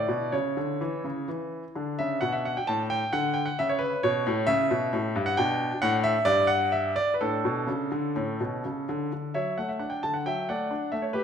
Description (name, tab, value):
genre	classical-period piano sonatina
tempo	124-136 BPM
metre	4/4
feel	rubato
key	D major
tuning	A4 = 441 Hz
part	bright grand piano	solo	0.0-11.2 s	G2 to A5	-25 LUFS	equal	none
room	moderate recital hall reverb, RT60 1.4 s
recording	none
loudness	-25 LUFS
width	side -8 dB against mid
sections	0.0-9.1 A section; 9.1-11.2 A section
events	none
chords	0.0 A (rootless); 1.8 D5; 3.6 A; 5.4 G; 7.2 D5/A; 9.1 D